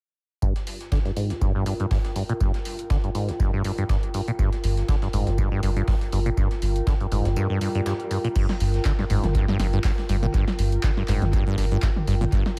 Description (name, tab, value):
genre	acid house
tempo	121 BPM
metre	4/4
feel	swing 55% on 16ths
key	G phrygian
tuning	A4 = 437 Hz
part	acid bass, saw	riff	0.4-12.4 s	G1 to D3	-29 LUFS	equal	sidechain pumping, dub echo
part	breakbeat sampler-style drum kit	drums	0.4-12.6 s	hi-hat, snare drum, tambourine	-45 LUFS	equal	high-pass filter on perc, high-pass filter on snare, high-pass filter on hats, high-pass filter on room, analog delay
part	electronic kick drum	drums	0.4-12.4 s	none	-26 LUFS	equal	none
part	airy breathy pad	texture	0.7-12.6 s	F4 to G5	-35 LUFS	equal	chorus, sidechain pumping
part	punchy analog drum machine	drums	0.6-12.5 s	crash cymbal, handclaps, hi-hat, snare drum, toms	-35 LUFS	equal	analog delay
part	round analog bass	bass	4.6-12.3 s	G1	-25 LUFS	equal	sidechain pumping
part	swell	sound effects	7.6-8.4 s	none	-38 LUFS	equal	none
room	digital ambience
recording	echo-heavy mix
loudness	-24 LUFS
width	mono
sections	0.4-8.4 A section; 8.4-12.6 B section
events	filter sweep on acid bass 0.4-8.4; kick drops out 7.4-8.4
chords	0.4 Gm7